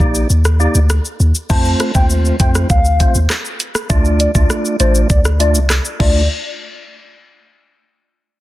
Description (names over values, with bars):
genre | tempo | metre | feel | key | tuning
dancehall | 100 BPM | 4/4 | straight | D phrygian | A4 = 441 Hz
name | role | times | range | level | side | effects
percussive tonewheel organ | accompaniment | 0.0-6.2 s | A3 to D5 | -20 LUFS | right 1 dB | fast rotary speaker, low-pass filter
warm 808-style bass | bass | 0.0-6.3 s | A1 to F2 | -14 LUFS | equal | none
island pop drum kit | drums | 0.0-6.1 s | crash cymbal, handclaps, hi-hat, kick drum, rim click, shaker | -16 LUFS | equal | none
hollow clarinet-like synth lead | melody | 1.5-6.3 s | C5 to A5 | -21 LUFS | left 2 dB | chorus, low-pass filter, tape echo
room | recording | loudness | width
digital ambience | dense, heavily limited modern master | -12 LUFS | side -16 dB against mid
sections
0.0-1.5 A section; 1.5-6.3 B section; 6.3-8.4 C section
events
kick muted 0.3-1.5; filter sweep 1.5-6.3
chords
0.0 Ebmaj7; 1.5 F; 3.9 Dm; 6.3 N.C.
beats
0.30 0.90 | 1.50 2.10 2.70 3.30 | 3.90 4.50 5.10 5.70